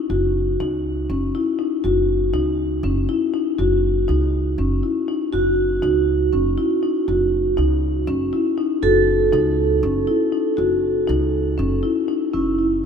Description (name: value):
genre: contemporary instrumental, chamber music in an uneven meter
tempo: 240 BPM (eighths)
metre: 7/8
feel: straight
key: F# dorian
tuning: A4 = 436 Hz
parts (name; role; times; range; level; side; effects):
- marimba with soft mallets; arpeggios; 0.0-12.9 s; C#4 to F#4; -20 LUFS; left 4 dB; none
- upright bass; bass; 0.1-12.9 s; F#1 to C#2; -23 LUFS; right 1 dB; none
- vibraphone with medium mallets; second line; 5.3-12.9 s; E4 to A4; -22 LUFS; right 9 dB; none
room: moderate cathedral reverb, RT60 5.1 s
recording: in a vast, echoing space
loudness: -17 LUFS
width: side -6 dB against mid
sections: 0.0-12.3 A section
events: none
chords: 0.0 F#m; 12.3 F#5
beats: | 0.10 0.34 0.59 0.84 1.09 1.34 1.59 | 1.84 2.09 2.34 2.59 2.84 3.08 3.33 | 3.58 3.83 4.08 4.33 4.58 4.83 5.08 | 5.33 5.58 5.83 6.08 6.33 6.58 6.83 | 7.08 7.33 7.58 7.83 8.08 8.33 8.58 | 8.83 9.08 9.33 9.58 9.83 10.08 10.33 | 10.58 10.83 11.09 11.34 11.59 11.84 12.09 | 12.34 12.59 12.84